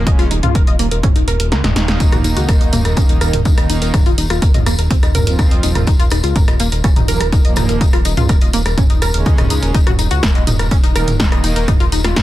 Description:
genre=melodic techno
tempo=124 BPM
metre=4/4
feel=straight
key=unclear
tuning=A4 = 441 Hz
part: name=tight sequenced synth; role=arpeggios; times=0.0-12.2 s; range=Bb3 to Eb5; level=-22 LUFS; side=left 2 dB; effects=chorus, sidechain pumping, tape echo
part: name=brassy analog pad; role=stabs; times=0.0-11.7 s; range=Bb2 to F4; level=-25 LUFS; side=right 2 dB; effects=chorus, sidechain pumping, tape echo
part: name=fat analog bass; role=bass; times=0.0-12.2 s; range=Eb1 to Eb2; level=-18 LUFS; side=equal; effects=sidechain pumping
part: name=electronic kick drum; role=drums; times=0.1-12.2 s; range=none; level=-14 LUFS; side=equal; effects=none
part: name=punchy analog drum machine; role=drums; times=0.1-12.2 s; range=hi-hat, rim click, snare drum, toms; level=-20 LUFS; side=right 1 dB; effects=sidechain pumping on hats, sidechain pumping on toms, soft clipping on snare
part: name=tambourine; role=percussion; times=2.0-12.2 s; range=none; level=-29 LUFS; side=left 3 dB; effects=none
room=little or no reverb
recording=dense, heavily limited modern master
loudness=-12 LUFS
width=side -15 dB against mid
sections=0.0-12.2 A section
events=kick drops out 1.5-2.0; drum fill 1.5-2.0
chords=0.1 Dbsus2/Eb; 2.0 Eb5; 3.9 F5/Eb; 5.9 Bbm/Eb; 7.8 Dbsus2/Eb; 9.7 Eb5; 11.7 F5/Eb

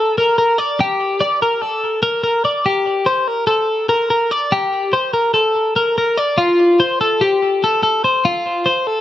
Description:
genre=rock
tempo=290 BPM (eighths)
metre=9/8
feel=straight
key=G minor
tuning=A4 = 439 Hz
part: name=twelve-string electric guitar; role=solo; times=0.0-9.0 s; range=F4 to D5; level=-14 LUFS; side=left 1 dB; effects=digital delay
room=moderate studio reverb, RT60 0.6 s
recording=none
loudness=-14 LUFS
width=side -12 dB against mid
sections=0.0-9.0 A section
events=none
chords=none

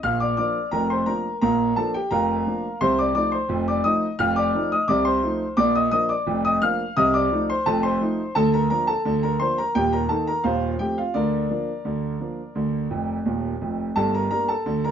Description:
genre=ragtime piano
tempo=86 BPM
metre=2/4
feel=straight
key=Bb major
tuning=A4 = 442 Hz
part: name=warm concert grand piano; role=solo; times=0.0-14.9 s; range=Eb1 to F6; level=-20 LUFS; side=equal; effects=none
room=moderate small room reverb, RT60 0.5 s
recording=nothing above 7.7 kHz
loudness=-20 LUFS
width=side -8 dB against mid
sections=0.0-14.0 A section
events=grand piano fill 12.9-14.0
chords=0.0 Bb; 2.8 F7; 5.6 Bb; 7.0 F7/C; 8.4 Bb/D; 9.7 Eb; 10.4 F7/Eb; 11.1 Bb/D; 14.0 Gm

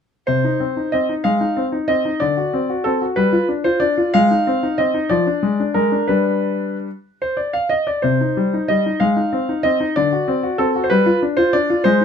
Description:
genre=classical-period piano sonatina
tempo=62 BPM (dotted quarters)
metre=6/8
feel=straight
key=C minor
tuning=A4 = 440 Hz
part: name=clear grand piano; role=solo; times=0.3-12.0 s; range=C3 to F5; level=-16 LUFS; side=left 1 dB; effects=none
room=light reverb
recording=close, detailed microphones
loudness=-16 LUFS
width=side -7 dB against mid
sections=0.3-12.0 A section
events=none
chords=0.3 Cm; 1.3 Ab; 2.2 D7; 3.2 G7; 4.1 Ab; 5.1 Ddim/F; 6.1 G; 8.0 Cm; 9.0 Ab; 10.0 D7; 10.9 G7

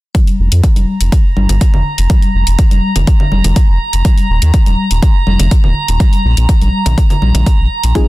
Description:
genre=progressive house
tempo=123 BPM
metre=4/4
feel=straight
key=unclear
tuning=A4 = 440 Hz
part: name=electronic hi-hat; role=drums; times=0.1-8.1 s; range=none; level=-24 LUFS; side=left 3 dB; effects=overdrive, sidechain pumping on hats
part: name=electronic kick drum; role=drums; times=0.1-8.1 s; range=none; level=-10 LUFS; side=equal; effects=overdrive
part: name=congas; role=percussion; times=0.1-8.1 s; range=none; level=-19 LUFS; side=left 2 dB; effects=overdrive, sidechain pumping on perc
part: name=drifting glass-harmonics texture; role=texture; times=0.9-8.1 s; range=Bb5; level=-21 LUFS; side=right 3 dB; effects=chorus, built-in reverb, sidechain pumping
part: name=round analog bass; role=bass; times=0.4-7.9 s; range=Eb1 to F2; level=-11 LUFS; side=equal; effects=sidechain pumping
part: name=deep mellow chord stab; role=stabs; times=8.0-8.1 s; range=F3 to Ab4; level=-15 LUFS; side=left 3 dB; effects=chorus, cassette tape, sidechain pumping
room=little or no reverb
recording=dense, heavily limited modern master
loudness=-9 LUFS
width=side -18 dB against mid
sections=0.1-8.1 A section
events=none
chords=0.1 Fsus4; 4.0 Eb5; 6.0 N.C.

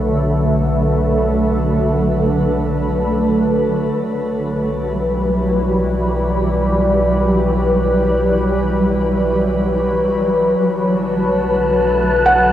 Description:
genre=ambient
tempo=free time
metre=none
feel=none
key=B minor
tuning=A4 = 438 Hz
part: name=shimmering ambient pad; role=sustained chords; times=0.0-12.5 s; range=D3 to B4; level=-15 LUFS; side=equal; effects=chorus, built-in reverb, shimmer reverb
part: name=warm sub bass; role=bass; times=0.0-12.5 s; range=B1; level=-22 LUFS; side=equal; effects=none
part: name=wind-like tuned noise texture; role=texture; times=11.0-12.5 s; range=A5 to F#6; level=-23 LUFS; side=right 1 dB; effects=built-in reverb, shimmer reverb
part: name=felt-muted upright piano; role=melody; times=12.3-12.5 s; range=F#5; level=-11 LUFS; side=right 1 dB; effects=cassette tape
room=wet spring reverb, RT60 2.5 s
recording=home recording on cassette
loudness=-14 LUFS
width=side -11 dB against mid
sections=0.0-12.5 A section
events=none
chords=0.0 Bm7; 4.0 Emadd9/B; 10.6 Bm7

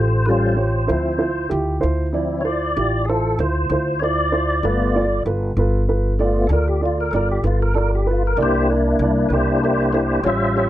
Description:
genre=blues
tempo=64 BPM (dotted quarters)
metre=12/8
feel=straight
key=C mixolydian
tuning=A4 = 440 Hz
part: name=dark baby grand piano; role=accompaniment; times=0.0-10.7 s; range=E4 to D5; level=-22 LUFS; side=right 3 dB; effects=none
part: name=tonewheel organ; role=sustained chords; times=0.0-10.7 s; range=F3 to E5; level=-21 LUFS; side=left 1 dB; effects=slow rotary speaker, chorus vibrato
part: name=upright bass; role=bass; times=0.0-10.7 s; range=G1 to D2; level=-21 LUFS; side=equal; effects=none
room=light reverb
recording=nothing above 10.6 kHz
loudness=-17 LUFS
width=side -13 dB against mid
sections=0.0-10.7 A section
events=tonewheel organ solo 0.0-10.7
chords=0.0 A7alt; 0.9 Dm7; 4.6 G9; 8.4 C9

